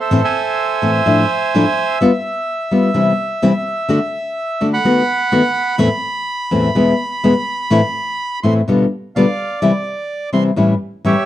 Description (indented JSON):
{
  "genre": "tango",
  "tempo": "126 BPM",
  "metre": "4/4",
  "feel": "rubato",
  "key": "A harmonic minor",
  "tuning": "A4 = 440 Hz",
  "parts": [
    { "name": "bandoneon", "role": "melody", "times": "0.0-11.3 s", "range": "G4 to C6", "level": "-18 LUFS", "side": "right 3 dB", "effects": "none" },
    { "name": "nylon-string guitar", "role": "accompaniment", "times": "0.1-11.1 s", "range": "E2 to F#4", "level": "-14 LUFS", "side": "left 2 dB", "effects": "none" }
  ],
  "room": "light reverb",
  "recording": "dark, warm production",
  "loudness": "-14 LUFS",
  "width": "side -12 dB against mid",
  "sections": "0.1-11.3 A section",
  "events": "none",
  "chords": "0.1 Am; 1.1 Dmadd9/A; 2.0 G7; 3.0 C; 3.9 D; 4.8 B7/D#; 5.8 Am/E; 6.7 E; 7.7 Am; 8.7 G7/B; 9.6 C; 10.6 A7"
}